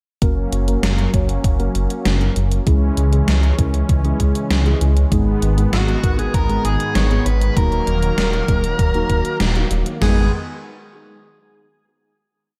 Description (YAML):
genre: synthwave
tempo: 98 BPM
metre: 4/4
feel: straight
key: G# minor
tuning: A4 = 440 Hz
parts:
  - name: brassy analog pad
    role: sustained chords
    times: 0.2-10.3 s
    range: D#3 to C#4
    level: -28 LUFS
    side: equal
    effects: chorus, sidechain pumping
  - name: mellow tine electric piano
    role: stabs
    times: 0.2-10.2 s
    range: G#2 to C#5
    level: -28 LUFS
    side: equal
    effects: lush chorus, analog delay
  - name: dark detuned saw bass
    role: bass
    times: 0.2-10.3 s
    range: D#1 to C#2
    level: -20 LUFS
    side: equal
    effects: sidechain pumping
  - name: gated 80s digital drum machine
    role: drums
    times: 0.2-10.2 s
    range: crash cymbal, kick drum, snare drum, toms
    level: -21 LUFS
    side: equal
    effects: gated reverb, gated reverb snare, overdrive
  - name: gated 80s digital drum machine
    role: drums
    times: 0.2-10.0 s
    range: hi-hat, snare drum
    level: -26 LUFS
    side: equal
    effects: gated reverb, gated reverb snare, overdrive
  - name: dark smooth lead guitar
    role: melody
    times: 5.7-10.3 s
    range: F#4 to C#5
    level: -26 LUFS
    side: equal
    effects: overdrive, tape echo
room: light reverb, digital ambience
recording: none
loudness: -18 LUFS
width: mono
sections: 0.2-10.0 verse; 10.0-12.5 final chord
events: band accent 9.4-9.7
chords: 0.2 F#; 2.7 C#m; 5.1 G#m; 7.6 D#m; 10.0 G#m